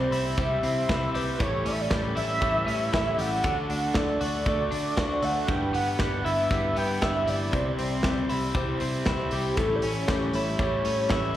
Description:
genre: jangly indie pop.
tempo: 118 BPM.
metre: 4/4.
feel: straight.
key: unclear.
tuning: A4 = 439 Hz.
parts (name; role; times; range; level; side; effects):
warm velvety synth lead; melody; 0.0-11.4 s; G4 to G5; -29 LUFS; right 1 dB; chorus, slapback echo.
biting overdriven guitar; accompaniment; 0.0-11.4 s; G2 to F#4; -36 LUFS; right 5 dB; slapback echo.
warbly lo-fi synth keys; accompaniment; 0.0-11.4 s; C4 to D5; -35 LUFS; right 1 dB; chorus, slapback echo.
twelve-string electric guitar; arpeggios; 0.0-11.4 s; G2 to F#4; -30 LUFS; left 4 dB; slapback echo.
vintage muted picked electric bass; bass; 0.0-11.3 s; G1 to D3; -32 LUFS; equal; none.
modern studio drum kit; drums; 0.1-11.4 s; hi-hat, kick drum, snare drum; -30 LUFS; equal; none.
room: light reverb, studio ambience.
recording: live gig heard through the venue's PA, recital hall reverb, vinyl crackle.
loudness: -24 LUFS.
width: side -12 dB against mid.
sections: 0.0-11.4 A section.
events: none.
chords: 0.0 C; 1.4 A7; 3.4 D; 5.5 G6; 7.5 C; 9.6 A7.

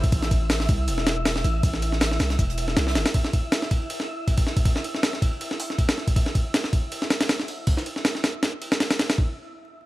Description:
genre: drum and bass, jungle.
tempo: 159 BPM.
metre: 4/4.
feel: swing 54% on 16ths.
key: A minor.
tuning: A4 = 440 Hz.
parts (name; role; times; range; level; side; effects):
long sustained 808-style bass; bass; 0.0-3.0 s; E1 to C2; -24 LUFS; equal; none.
jungle sampler-style drum kit; drums; 0.0-9.3 s; hi-hat, kick drum, ride cymbal, snare drum; -22 LUFS; equal; none.
wind-like tuned noise texture; texture; 0.0-9.2 s; E4 to E5; -34 LUFS; equal; built-in reverb.
open jazz drum kit; drums; 0.1-3.1 s; hi-hat, shaker, snare drum; -37 LUFS; left 1 dB; none.
room: light reverb, studio ambience.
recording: vinyl crackle.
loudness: -21 LUFS.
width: side -17 dB against mid.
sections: 0.0-9.2 A section.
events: filter sweep on 808-style bass 0.0-3.1.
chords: 0.0 Am; 3.1 N.C..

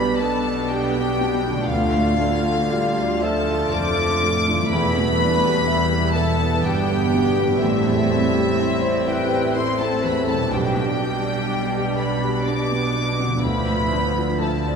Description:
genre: cinematic, emotional film score for orchestra.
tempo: 62 BPM.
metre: 3/4.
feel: rubato.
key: A minor.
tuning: A4 = 439 Hz.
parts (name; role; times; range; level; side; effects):
warm studio violin section; melody; 0.0-14.8 s; E5 to D6; -27 LUFS; left 3 dB; none.
clear clarinet; second line; 0.0-14.8 s; E4 to D5; -28 LUFS; equal; none.
clear studio violin section; second line; 0.0-14.8 s; E5 to D6; -28 LUFS; left 2 dB; none.
dark studio viola section; accompaniment; 0.0-14.8 s; F3 to B4; -26 LUFS; right 1 dB; none.
felt-muted upright piano; accompaniment; 0.0-14.8 s; A1 to F5; -26 LUFS; equal; none.
mellow French horn section; sustained chords; 0.0-14.8 s; F3 to D4; -28 LUFS; left 1 dB; none.
concert harp; arpeggios; 0.0-14.8 s; A2 to D5; -30 LUFS; left 3 dB; none.
warm studio cello section; bass; 0.0-14.8 s; D2 to B2; -27 LUFS; right 2 dB; none.
warm studio double bass section; bass; 0.0-14.8 s; E1 to D2; -28 LUFS; right 3 dB; none.
room: wet concert hall reverb, RT60 2.5 s.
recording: recorded in a church or concert hall.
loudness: -18 LUFS.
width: side -6 dB against mid.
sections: 0.0-14.8 A section.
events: none.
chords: 0.0 G/B; 1.7 Dmadd9; 4.7 Em; 7.6 Am7; 10.5 G/B; 13.4 Dmadd9.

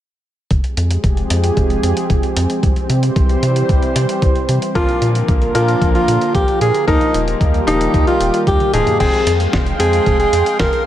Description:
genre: italo disco.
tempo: 113 BPM.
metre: 4/4.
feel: straight.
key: F minor.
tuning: A4 = 440 Hz.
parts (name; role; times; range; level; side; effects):
lush unison pad; sustained chords; 0.8-10.9 s; D3 to C6; -20 LUFS; equal; chorus, shimmer reverb.
round analog bass; bass; 0.5-10.7 s; Eb1 to C3; -18 LUFS; equal; none.
dusty soul sampler-style drum kit; drums; 0.5-10.8 s; crash cymbal, hi-hat, snare drum, toms; -25 LUFS; equal; none.
electronic kick drum; drums; 0.5-10.7 s; none; -17 LUFS; equal; none.
breathy alto saxophone; melody; 4.8-10.8 s; Eb4 to Bb4; -16 LUFS; right 1 dB; digital delay, shimmer reverb.
bright grand piano; stabs; 4.8-10.9 s; Bb2 to G5; -22 LUFS; left 4 dB; shimmer reverb.
room: light reverb.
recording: none.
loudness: -13 LUFS.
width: side -12 dB against mid.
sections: 0.5-9.0 A section; 9.0-10.9 B section.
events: drum fill 8.6-9.0.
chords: 0.5 Fmadd9; 2.6 C; 4.8 Bb; 6.9 Ebadd9; 9.0 Fmadd9.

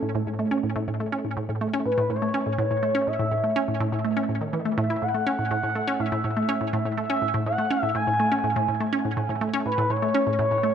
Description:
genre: ambient.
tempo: 123 BPM.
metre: 4/4.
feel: straight.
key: A major.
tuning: A4 = 439 Hz.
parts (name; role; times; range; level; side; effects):
expressive portamento lead; melody; 0.0-10.7 s; A4 to G#5; -26 LUFS; equal; wide subtle chorus, tape echo.
resonant blip pluck; riff; 0.0-10.7 s; A2 to E4; -25 LUFS; right 1 dB; chorus, tape echo.
room: wet plate reverb, RT60 2.5 s.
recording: none.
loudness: -22 LUFS.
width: side -8 dB against mid.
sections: 0.0-10.7 A section.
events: none.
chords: 0.0 A.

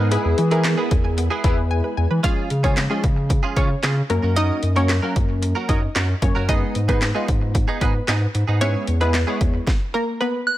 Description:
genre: dance-pop.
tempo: 113 BPM.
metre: 4/4.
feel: straight.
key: unclear.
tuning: A4 = 439 Hz.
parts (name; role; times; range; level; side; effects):
soft struck synth lead; melody; 0.0-1.7, 10.5-10.6 s; G#4 to F#6; -25 LUFS; right 1 dB; chorus, digital delay.
ensemble organ-string; sustained chords; 0.0-2.2 s; G#3 to E4; -29 LUFS; right 2 dB; phaser, ensemble chorus, sidechain pumping.
hollow square pluck; arpeggios; 0.0-2.2 s; B3 to G#5; -30 LUFS; left 1 dB; chorus, sidechain pumping, digital delay.
direct-recorded clean electric guitar; riff; 0.0-9.6 s; B3 to A#4; -29 LUFS; right 6 dB; ensemble chorus.
saturated sub bass; bass; 0.0-9.6 s; E2 to E3; -21 LUFS; equal; sidechain pumping.
funky polysynth comp; accompaniment; 0.1-9.7 s; E#3 to C#5; -26 LUFS; left 2 dB; chorus, sidechain pumping.
house drum kit; drums; 0.1-9.8 s; handclaps, hi-hat, kick drum, snare drum; -21 LUFS; equal; none.
analog pluck; melody; 2.2-10.6 s; A#3 to E#5; -26 LUFS; equal; chorus, sidechain pumping, digital delay.
room: light reverb.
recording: none.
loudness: -18 LUFS.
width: side -14 dB against mid.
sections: 0.0-2.2 A section; 2.2-10.6 B section.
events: silent gap 1.7-2.2; stop 9.7-10.6.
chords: 0.1 E; 2.2 C#; 4.1 F#; 6.5 G#m; 8.6 E.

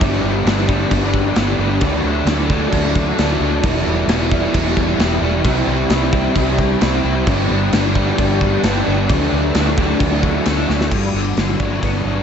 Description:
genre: rock, shoegaze and dream pop.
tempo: 132 BPM.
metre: 4/4.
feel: straight.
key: G major.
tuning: A4 = 438 Hz.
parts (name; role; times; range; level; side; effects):
deep dark ambient pad; sustained chords; 0.0-12.2 s; F#3 to B5; -26 LUFS; equal; chorus, built-in reverb.
biting overdriven guitar; riff; 0.0-12.2 s; G2 to E4; -21 LUFS; left 11 dB; ensemble chorus.
overdriven semi-hollow guitar; riff; 0.0-12.2 s; G2 to E4; -21 LUFS; right 9 dB; reverse reverb.
vintage muted fingered electric bass; bass; 0.0-12.2 s; E1 to D2; -21 LUFS; equal; none.
gated 80s drum kit; drums; 0.0-11.9 s; crash cymbal, hi-hat, kick drum, snare drum; -19 LUFS; equal; none.
room: small room ambience.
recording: nothing above 7.9 kHz.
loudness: -14 LUFS.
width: side -7 dB against mid.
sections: 0.0-10.9 A section; 10.9-12.2 B section.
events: drum fill 10.7.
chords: 0.0 G; 1.8 D; 3.6 Em7; 5.5 C; 7.3 G; 9.1 D; 10.9 Gmaj7.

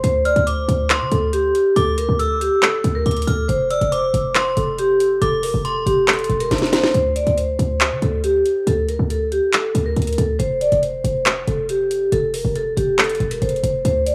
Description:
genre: hip hop, trap.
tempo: 139 BPM.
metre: 4/4.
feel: half-time.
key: D minor.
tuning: A4 = 440 Hz.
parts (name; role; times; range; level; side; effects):
vibraphone with soft mallets; melody; 0.0-14.1 s; G4 to D5; -22 LUFS; equal; low-pass filter, analog delay.
short 808-style bass; bass; 0.0-14.1 s; E1 to D3; -24 LUFS; equal; none.
trap drum kit; drums; 0.0-14.1 s; handclaps, hi-hat, rim click, snare drum; -23 LUFS; equal; none.
metallic FM bell; second line; 0.3-6.9 s; C6 to F6; -28 LUFS; equal; chorus, phaser, analog delay.
room: moderate spring reverb, RT60 1.7 s, digital ambience.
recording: studio ambience.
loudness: -19 LUFS.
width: mono.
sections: 0.0-6.9 A section; 6.9-14.1 B section.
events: drum fill 6.5-6.9.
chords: 0.0 D7sus2; 3.5 F5; 6.9 D7(no3); 10.4 F5.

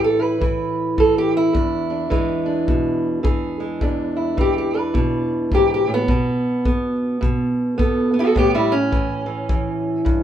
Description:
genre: acoustic country blues, solo or duo.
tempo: 106 BPM.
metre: 4/4.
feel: swing 61% on 8ths.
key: E mixolydian.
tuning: A4 = 440 Hz.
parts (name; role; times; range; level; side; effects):
fingerpicked steel-string acoustic guitar; melody; 0.0-10.2 s; E2 to B4; -18 LUFS; right 1 dB; none.
kick drum; drums; 0.4-10.2 s; none; -22 LUFS; left 1 dB; none.
room: light reverb.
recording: band playing live in one room.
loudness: -17 LUFS.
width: side -10 dB against mid.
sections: 0.0-10.2 A section.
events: steel-string acoustic guitar solo 0.0-10.2.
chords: 0.0 A5; 1.6 E7; 6.1 B5; 8.4 A7.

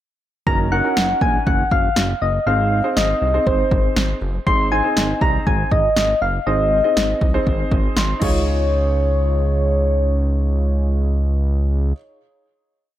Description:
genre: synth-pop.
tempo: 120 BPM.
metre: 4/4.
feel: straight.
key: Db major.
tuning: A4 = 440 Hz.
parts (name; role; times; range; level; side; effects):
soft struck synth lead; melody; 0.5-11.9 s; C5 to C6; -20 LUFS; left 1 dB; chorus, analog delay.
warm concert grand piano; accompaniment; 0.5-11.9 s; C4 to C6; -25 LUFS; right 2 dB; analog delay.
chorused synth bass; bass; 0.5-11.9 s; Gb1 to Db2; -20 LUFS; equal; none.
deep house drum kit; drums; 0.5-8.3 s; crash cymbal, kick drum, snare drum; -20 LUFS; equal; none.
room: moderate spring reverb, RT60 1.9 s, digital ambience.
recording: echo-heavy mix.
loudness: -16 LUFS.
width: side -12 dB against mid.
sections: 0.5-8.5 verse; 8.5-12.5 final hit.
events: grand piano fill 7.5-8.5.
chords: 0.5 Gb6; 2.5 Ab; 8.2 Dbadd9.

